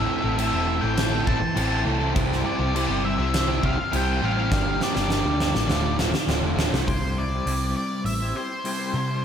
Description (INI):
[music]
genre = quiet-loud alternative rock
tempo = 102 BPM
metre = 4/4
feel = straight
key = unclear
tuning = A4 = 440 Hz
[part]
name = octave-fuzz lead guitar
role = melody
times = 0.0-9.2 s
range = C5 to A5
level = -29 LUFS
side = left 1 dB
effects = distortion, tape echo
[part]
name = rich studio string section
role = sustained chords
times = 0.0-6.9 s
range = G4 to D6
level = -40 LUFS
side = left 4 dB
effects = none
[part]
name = crunchy overdriven guitar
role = riff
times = 0.0-6.9 s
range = D2 to C5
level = -28 LUFS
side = right 9 dB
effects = slapback echo
[part]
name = overdriven semi-hollow guitar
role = riff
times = 0.0-6.9 s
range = D2 to C5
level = -29 LUFS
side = left 9 dB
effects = slapback echo
[part]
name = hollow-body short-scale picked electric bass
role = bass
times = 0.0-9.2 s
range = D1 to C3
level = -26 LUFS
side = equal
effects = none
[part]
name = huge arena drum kit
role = drums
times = 0.4-8.8 s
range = crash cymbal, hi-hat, kick drum, snare drum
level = -27 LUFS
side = right 1 dB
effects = none
[part]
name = electric guitar through a small old amp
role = arpeggios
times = 6.9-9.2 s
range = C3 to C5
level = -29 LUFS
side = left 2 dB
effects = tremolo
[sound]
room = moderate lush hall reverb, RT60 2.4 s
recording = big arena sound, faint mains hum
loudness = -21 LUFS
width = side -8 dB against mid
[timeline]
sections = 0.0-6.9 A section; 6.9-9.2 B section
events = drum fill 4.5-6.9; half time 6.9-9.2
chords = 0.0 Am; 2.2 C; 4.5 Gm7; 5.7 Dm; 6.9 Cadd9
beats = 0.39 0.98 1.57 | 2.16 2.75 3.34 3.93 | 4.52 5.11 5.70 6.29 | 6.88 7.47 8.06 8.65 | 9.24